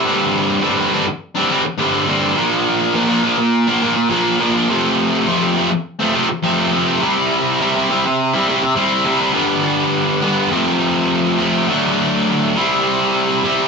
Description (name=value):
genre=rock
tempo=103 BPM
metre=4/4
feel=straight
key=unclear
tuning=A4 = 442 Hz
part: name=distorted electric guitar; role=solo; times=0.0-13.7 s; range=F2 to E4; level=-14 LUFS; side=equal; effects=distortion
room=wet studio ambience, RT60 0.5 s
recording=rough rehearsal-room recording, warm saturation, nothing above 7.8 kHz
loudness=-14 LUFS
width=side -4 dB against mid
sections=0.0-9.4 A section; 9.4-13.7 B section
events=none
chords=0.0 Gsus4; 2.4 Bb; 4.7 F; 7.0 C; 9.4 G; 10.5 F; 11.7 D; 12.6 C